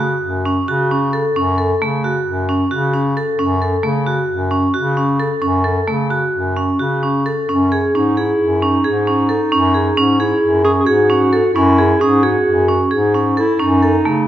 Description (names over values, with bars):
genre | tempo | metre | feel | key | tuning
contemporary instrumental, chamber music in an uneven meter | 265 BPM (eighths) | 9/8 | straight | F# dorian | A4 = 440 Hz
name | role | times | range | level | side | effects
vibraphone with hard mallets | arpeggios | 0.0-14.3 s | A3 to A4 | -16 LUFS | right 1 dB | none
clear bass clarinet | bass | 0.0-14.3 s | F#2 to C#3 | -19 LUFS | left 2 dB | none
breathy clarinet | second line | 7.5-14.3 s | C#4 to G#4 | -18 LUFS | right 2 dB | none
room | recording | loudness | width
moderate scoring stage reverb, RT60 1.5 s | none | -13 LUFS | side -12 dB against mid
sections
0.0-14.3 A section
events
none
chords
0.0 F#m; 7.5 C#m/F#; 13.6 F#m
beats
0.00 0.23 0.46 0.68 0.91 1.13 | 1.36 1.58 1.81 2.04 2.26 2.49 2.71 2.94 3.16 | 3.39 3.61 3.84 4.07 4.29 4.52 4.74 4.97 5.20 | 5.42 5.65 5.88 6.11 6.34 6.57 6.79 7.03 7.25 | 7.48 7.71 7.94 8.17 8.40 8.62 8.85 9.07 9.30 | 9.53 9.75 9.97 10.20 10.43 10.65 10.88 11.10 11.33 | 11.55 11.78 12.00 12.23 12.46 12.68 12.91 13.14 13.36 | 13.59 13.82 14.05 14.27